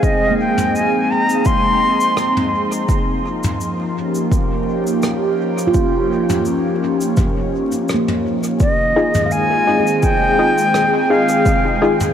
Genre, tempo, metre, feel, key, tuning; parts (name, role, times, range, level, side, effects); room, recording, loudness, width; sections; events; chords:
ambient dub; 84 BPM; 4/4; swing 54% on 16ths; F minor; A4 = 438 Hz
bright concert flute; melody; 0.0-2.5, 8.6-11.8 s; Eb5 to C6; -18 LUFS; left 1 dB; dub echo
airy breathy pad; sustained chords; 0.0-12.1 s; Eb3 to Ab4; -19 LUFS; equal; chorus, phaser
handpan; arpeggios; 0.0-11.5 s; Bb3 to F5; -23 LUFS; right 4 dB; vintage 12-bit sampler grit, dub echo
electronic kick drum; drums; 0.0-11.6 s; -18 LUFS; equal; overdrive
soft brush drum kit; drums; 0.0-12.1 s; cabasa, rim click, toms; -25 LUFS; left 1 dB; dub echo
filtered dub chord stab; stabs; 9.0-12.1 s; Eb4 to Ab4; -20 LUFS; left 3 dB; chorus, dub echo
moderate huge ambient reverb, RT60 8.1 s; vinyl crackle; -14 LUFS; side -9 dB against mid
0.0-8.6 A section; 8.6-12.1 B section
0.0 Fm7; 2.9 Eb9; 8.6 Fm7